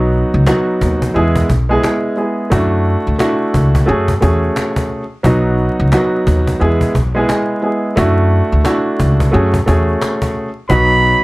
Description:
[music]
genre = hip hop, boom-bap hip-hop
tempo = 88 BPM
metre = 4/4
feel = swing 60% on 16ths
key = unclear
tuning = A4 = 439 Hz
[part]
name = dark baby grand piano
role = accompaniment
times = 0.0-11.2 s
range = F#3 to G#4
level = -15 LUFS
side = right 1 dB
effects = cassette tape, high-pass filter, low-pass filter
[part]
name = upright bass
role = bass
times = 0.0-11.1 s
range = B1 to F#2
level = -14 LUFS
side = equal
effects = none
[part]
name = cajon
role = drums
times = 0.1-11.1 s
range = none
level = -20 LUFS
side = equal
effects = none
[part]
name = trumpet with straight mute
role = melody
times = 10.7-11.2 s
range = B5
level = -12 LUFS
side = right 1 dB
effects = high-pass filter, low-pass filter
[sound]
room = light reverb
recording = vinyl crackle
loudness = -12 LUFS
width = side -21 dB against mid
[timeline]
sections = 0.0-10.7 A section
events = none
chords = 0.0 B; 1.2 E; 2.5 Dadd9; 3.9 F#madd9; 5.2 B; 6.6 E; 8.0 Dadd9; 9.3 F#madd9; 10.7 B

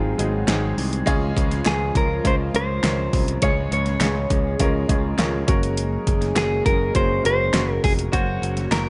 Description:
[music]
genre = piano-driven pop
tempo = 102 BPM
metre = 4/4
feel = straight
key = unclear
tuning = A4 = 440 Hz
[part]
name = direct-recorded clean electric guitar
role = melody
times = 0.0-8.9 s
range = Gb4 to Db5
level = -27 LUFS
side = equal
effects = subtle chorus
[part]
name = clear upright piano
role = accompaniment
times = 0.0-8.9 s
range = Ab2 to C5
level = -29 LUFS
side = equal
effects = none
[part]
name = airy breathy pad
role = sustained chords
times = 0.0-8.9 s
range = Eb3 to Db4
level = -37 LUFS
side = equal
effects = none
[part]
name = modern bright picked electric bass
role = bass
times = 0.0-8.9 s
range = F1 to Db2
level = -27 LUFS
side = equal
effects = none
[part]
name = warm French horn section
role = second line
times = 0.2-8.7 s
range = F3 to Ab4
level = -34 LUFS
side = equal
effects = none
[part]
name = pop drum kit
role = drums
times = 0.2-8.9 s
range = hi-hat, kick drum, snare drum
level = -25 LUFS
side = equal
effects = overdrive
[part]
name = group handclap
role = percussion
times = 0.5-8.9 s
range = none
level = -35 LUFS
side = equal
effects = none
[sound]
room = light reverb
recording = nothing above 10.7 kHz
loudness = -21 LUFS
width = mono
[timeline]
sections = 0.0-8.9 A section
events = none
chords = 0.0 Ab; 1.1 Db; 5.5 Gb

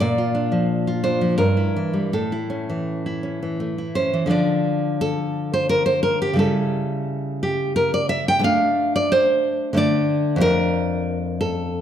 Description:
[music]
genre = romantic piece for solo classical guitar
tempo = 81-93 BPM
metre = 3/4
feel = rubato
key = D minor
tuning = A4 = 441 Hz
[part]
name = nylon-string guitar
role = solo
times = 0.0-11.8 s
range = F2 to G5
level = -19 LUFS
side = equal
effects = none
[sound]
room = wet recital hall reverb, RT60 1.4 s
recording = dark, warm production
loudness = -19 LUFS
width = side -9 dB against mid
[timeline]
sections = 0.0-4.3 A section; 4.3-11.8 B section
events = none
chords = 0.0 Bb; 1.4 Edim/G; 2.1 A; 4.3 Dm; 6.4 A7/C#; 8.4 D5; 10.4 Dm/F

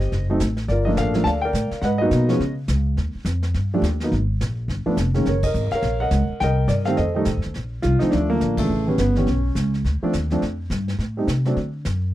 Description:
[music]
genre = jazz piano trio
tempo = 210 BPM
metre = 4/4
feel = swing 60% on 8ths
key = Bb major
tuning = A4 = 437 Hz
[part]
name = dark concert grand piano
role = melody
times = 0.0-11.6 s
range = Db3 to A5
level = -21 LUFS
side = equal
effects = slapback echo
[part]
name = upright bass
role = bass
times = 0.0-12.1 s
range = F1 to D3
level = -22 LUFS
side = equal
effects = none
[part]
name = vintage brush drum kit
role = drums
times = 0.0-12.1 s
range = brushed snare drum, crash cymbal, hi-hat, kick drum, ride cymbal, snare drum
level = -32 LUFS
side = equal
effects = none
[sound]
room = little or no reverb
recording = dry, close 1970s-style studio recording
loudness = -19 LUFS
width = side -14 dB against mid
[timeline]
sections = 0.0-7.6 A section; 7.6-12.1 B section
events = band accent 5.4, 8.6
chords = 0.1 F#dim7; 0.7 Gm9; 1.8 Abm7; 2.4 N.C.; 3.0 Ebadd9; 4.1 Absus2; 4.7 G7(no3); 5.3 Gb6; 6.4 Cm7; 7.0 F7; 7.6 Bbmaj7; 8.7 A7; 9.8 Dm; 11.0 Am; 11.6 D

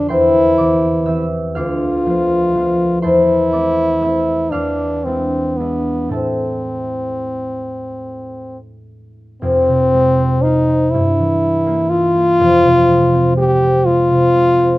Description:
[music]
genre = classical, romantic duo for French horn and harp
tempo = 36-42 BPM (dotted quarters)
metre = 6/8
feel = rubato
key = A minor, F minor from 9.4 s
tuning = A4 = 436 Hz
[part]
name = clear French horn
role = melody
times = 0.0-14.8 s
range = B3 to G4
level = -15 LUFS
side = equal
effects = none
[part]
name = concert harp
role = accompaniment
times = 0.0-14.8 s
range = F1 to A6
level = -17 LUFS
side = equal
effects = none
[sound]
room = light reverb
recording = close, detailed microphones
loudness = -13 LUFS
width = side -18 dB against mid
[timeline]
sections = 0.0-9.4 A section; 9.4-14.8 B section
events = none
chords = 0.1 C/E; 1.6 Bdim/D; 3.0 Am/E; 4.5 E7b9; 6.1 Am; 9.4 Fm; 10.9 Edim/G; 12.4 Fm

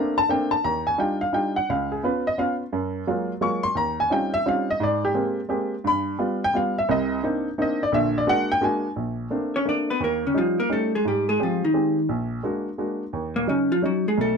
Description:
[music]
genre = jazz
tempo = 173 BPM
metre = 3/4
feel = swing 65% on 8ths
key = Eb major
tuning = A4 = 445 Hz
[part]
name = clear upright piano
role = accompaniment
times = 0.0-14.4 s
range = Bb1 to Db6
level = -22 LUFS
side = equal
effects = none
[part]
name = vintage hollow-body jazz guitar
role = melody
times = 9.6-14.4 s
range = Bb2 to D5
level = -21 LUFS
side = left 1 dB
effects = none
[sound]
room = light reverb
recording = close, detailed microphones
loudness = -21 LUFS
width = side -5 dB against mid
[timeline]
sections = 0.6-9.0 A section; 9.0-14.4 B section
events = none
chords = 0.0 Bbmaj9; 0.6 Ebmaj9; 1.7 Db7; 2.7 Gbmaj9; 3.8 Eb13; 4.8 Abmaj9; 5.9 G7; 6.9 Cm9; 7.9 Bbaug7; 9.0 Bbmaj9; 10.0 Eb7; 11.1 Abmaj7; 12.1 Bb7b13; 13.1 Ebm7

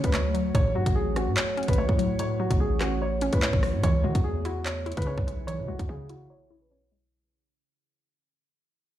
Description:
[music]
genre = hip hop, drill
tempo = 146 BPM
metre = 4/4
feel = half-time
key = C# minor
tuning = A4 = 440 Hz
[part]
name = dark grand piano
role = melody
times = 0.0-7.1 s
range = F#4 to C#5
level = -31 LUFS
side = left 1 dB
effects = low-pass filter, ping-pong delay
[part]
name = hollow square pluck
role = accompaniment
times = 0.0-7.1 s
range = A2 to E4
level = -32 LUFS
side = left 1 dB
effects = chorus, low-pass filter
[part]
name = deep dark ambient pad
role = sustained chords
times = 0.0-7.1 s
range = C#3 to C#5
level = -34 LUFS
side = right 3 dB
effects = chorus, built-in reverb, low-pass filter
[part]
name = hard-hitting 808-style bass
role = bass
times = 0.0-6.3 s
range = A1 to E3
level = -29 LUFS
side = equal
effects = none
[part]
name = drill drum kit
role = drums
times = 0.0-6.2 s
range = handclaps, hi-hat, kick drum, rim click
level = -27 LUFS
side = equal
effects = none
[sound]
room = light reverb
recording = played on a big sound system in a bare room, large studio reverb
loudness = -23 LUFS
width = side -12 dB against mid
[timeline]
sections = 0.0-3.8 A section; 3.8-7.1 B section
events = fade-out 3.8-7.1; filter sweep 3.8-7.1; break 6.3-7.1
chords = 0.0 Dmaj7; 0.5 A6; 3.8 C#m

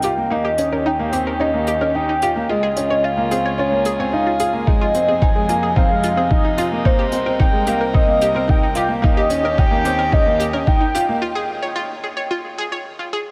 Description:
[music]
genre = piano and strings electronica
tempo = 110 BPM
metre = 4/4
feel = straight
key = unclear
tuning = A4 = 440 Hz
[part]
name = warm velvety synth lead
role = melody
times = 0.0-11.2 s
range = C5 to Ab5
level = -22 LUFS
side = equal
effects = chorus
[part]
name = dark string quartet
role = sustained chords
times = 0.0-11.2 s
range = C2 to Bb4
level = -27 LUFS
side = equal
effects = sidechain pumping, low-pass filter
[part]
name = analog pluck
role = arpeggios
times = 0.0-13.2 s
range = Eb4 to Db5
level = -29 LUFS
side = equal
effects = chorus, vintage 12-bit sampler grit, sidechain pumping, tape echo
[part]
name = clear concert grand piano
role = riff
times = 0.0-11.2 s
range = Ab3 to F4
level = -26 LUFS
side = equal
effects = none
[part]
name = hi-hat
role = drums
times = 0.0-11.1 s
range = none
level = -34 LUFS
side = equal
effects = none
[part]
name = electronic kick drum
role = drums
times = 4.7-10.8 s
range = none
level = -19 LUFS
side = equal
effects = none
[sound]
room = moderate huge ambient reverb, RT60 6.2 s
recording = none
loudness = -18 LUFS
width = mono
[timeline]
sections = 0.0-13.3 A section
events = build-up 0.0-13.3; break 11.2-13.3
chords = 0.3 Eb7; 2.5 Db; 4.7 Fm7; 6.9 Cm7; 9.0 Eb7; 11.2 Db

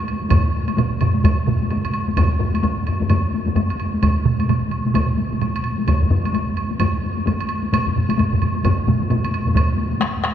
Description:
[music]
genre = japanese traditional, taiko drum ensemble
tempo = 130 BPM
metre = 4/4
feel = swing 60% on 16ths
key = none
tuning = none
[part]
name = woodblock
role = percussion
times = 0.1-10.3 s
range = none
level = -27 LUFS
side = right 2 dB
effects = none
[part]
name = taiko ensemble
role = percussion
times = 0.2-10.1 s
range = none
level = -24 LUFS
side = left 3 dB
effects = none
[part]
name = taiko ensemble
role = percussion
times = 0.3-10.3 s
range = none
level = -23 LUFS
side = left 2 dB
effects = none
[part]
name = taiko ensemble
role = percussion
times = 0.3-9.5 s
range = none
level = -24 LUFS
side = right 4 dB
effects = none
[part]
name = taiko ensemble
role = percussion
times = 0.3-9.7 s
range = none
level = -23 LUFS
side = right 1 dB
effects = none
[sound]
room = wet cathedral reverb, RT60 6.4 s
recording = recorded in a church or concert hall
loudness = -17 LUFS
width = side -10 dB against mid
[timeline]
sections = 0.0-9.6 A section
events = none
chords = none

